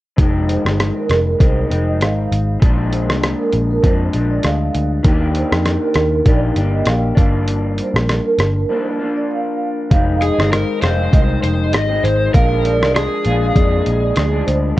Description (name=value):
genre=indie pop, bedroom pop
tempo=99 BPM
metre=4/4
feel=swing 55% on 16ths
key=F dorian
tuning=A4 = 439 Hz
part: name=electric guitar through a small old amp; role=accompaniment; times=0.2-14.8 s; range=F2 to G4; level=-20 LUFS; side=left 2 dB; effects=lush chorus, vibrato effect
part: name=vintage muted picked electric bass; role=bass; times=0.2-14.7 s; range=F1 to F2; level=-18 LUFS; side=equal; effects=none
part: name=lo-fi sampler-style drum kit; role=drums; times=0.2-14.6 s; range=hi-hat, kick drum, rim click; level=-16 LUFS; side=equal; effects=none
part: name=vibraphone with soft mallets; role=second line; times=0.5-14.8 s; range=Bb4 to F5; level=-22 LUFS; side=right 3 dB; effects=ensemble chorus, analog delay
part: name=overdriven slide guitar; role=melody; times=10.2-14.4 s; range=Ab4 to Eb5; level=-20 LUFS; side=left 1 dB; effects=wide subtle chorus, analog delay, plate reverb
room=moderate studio reverb, RT60 0.7 s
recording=worn, warbling old tape, cassette tape, warbly pitch drift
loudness=-14 LUFS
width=side -16 dB against mid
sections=0.2-9.9 A section; 9.9-14.8 B section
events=break 8.7-9.9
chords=0.2 Fm7; 2.6 Bb7; 5.1 Ebmaj7; 7.2 Gm7; 9.9 Fm7; 12.3 Bb7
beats=| 0.19 0.79 1.40 2.01 | 2.62 3.23 3.83 4.44 | 5.05 5.66 6.27 6.88 | 7.48 8.09 8.70 9.31 | 9.91 10.52 11.13 11.74 | 12.35 12.95 13.56 14.17 | 14.78